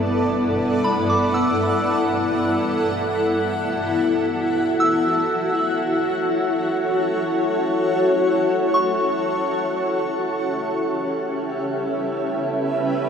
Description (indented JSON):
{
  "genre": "ambient",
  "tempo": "free time",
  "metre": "none",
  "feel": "none",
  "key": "A mixolydian",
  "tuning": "A4 = 440 Hz",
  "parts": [
    { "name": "granular cloud pad", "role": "sustained chords", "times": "0.0-13.1 s", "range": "G2 to F#5", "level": "-19 LUFS", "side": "equal", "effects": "built-in reverb, shimmer reverb" },
    { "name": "soft synth bell", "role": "arpeggios", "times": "0.0-9.9 s", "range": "B5 to E6", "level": "-26 LUFS", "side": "equal", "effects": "chorus, tape echo, shimmer reverb" },
    { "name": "pedal harmonium", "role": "drone", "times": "9.5-13.1 s", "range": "none", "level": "barely audible", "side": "none", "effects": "none" }
  ],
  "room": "wet huge ambient reverb, RT60 8.1 s",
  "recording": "none",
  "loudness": "-19 LUFS",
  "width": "side -7 dB against mid",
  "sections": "0.0-9.5 A section; 9.5-13.1 B section",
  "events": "none",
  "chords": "0.0 Gmaj9; 3.2 F#m7; 9.5 A7"
}